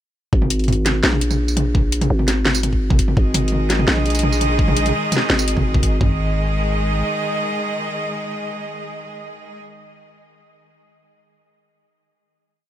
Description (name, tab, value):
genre	half-time drum and bass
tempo	169 BPM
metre	4/4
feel	half-time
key	unclear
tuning	A4 = 440 Hz
part	growling 808-style bass	bass	0.3-7.0 s	G#1 to A#1	-19 LUFS	equal	none
part	drum and bass drum kit	drums	0.3-6.1 s	kick drum, toms	-18 LUFS	equal	none
part	drum and bass drum kit	drums	0.4-5.9 s	hi-hat, snare drum, tambourine, toms	-20 LUFS	equal	none
part	bright studio cello section	sustained chords	3.2-9.6 s	D#3 to D#5	-23 LUFS	right 1 dB	sidechain pumping
room	little or no reverb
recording	none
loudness	-16 LUFS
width	side -12 dB against mid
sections	0.3-6.0 drop; 6.0-8.8 final chord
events	drop 0.3-6.0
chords	0.3 G#5